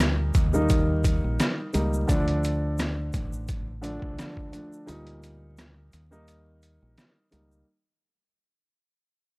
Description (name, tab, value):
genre	hip hop, boom-bap hip-hop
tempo	86 BPM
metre	4/4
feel	swing 54% on 16ths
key	unclear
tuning	A4 = 441 Hz
part	dark concert grand piano	accompaniment	0.0-7.6 s	Bb2 to Eb4	-30 LUFS	equal	cassette tape, high-pass filter, low-pass filter
part	deep dub fingered electric bass	bass	0.0-7.6 s	A1 to Eb2	-28 LUFS	equal	transformer saturation
part	trip hop sampler-style drum kit	drums	0.0-7.5 s	hi-hat, kick drum, rim click, snare drum	-26 LUFS	equal	overdrive
part	egg shaker	percussion	0.3-7.7 s	none	-45 LUFS	left 1 dB	none
room	little or no reverb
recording	dry, gritty hardware recording, transformer saturation, vinyl crackle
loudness	-23 LUFS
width	side -30 dB against mid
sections	0.0-7.7 A section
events	fade-out 0.0-7.7; break 4.9-7.7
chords	0.0 Eb/D; 2.1 Dm; 4.9 Eb/D